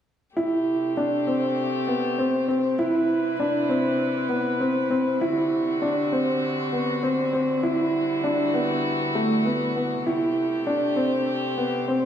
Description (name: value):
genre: electronica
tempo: 99 BPM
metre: 4/4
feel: straight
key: A dorian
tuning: A4 = 439 Hz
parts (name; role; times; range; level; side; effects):
- warm string quartet; sustained chords; 0.4-12.1 s; C3 to B4; -28 LUFS; equal; shimmer reverb
- dark upright piano; riff; 0.4-12.1 s; A3 to E4; -22 LUFS; equal; ping-pong delay, shimmer reverb
room: wet recital hall reverb, RT60 1.5 s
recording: none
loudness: -21 LUFS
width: side -9 dB against mid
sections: 0.4-12.1 A section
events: none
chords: 0.4 Am7; 2.8 Cmaj7; 5.2 D7; 7.6 Em9; 10.1 Am7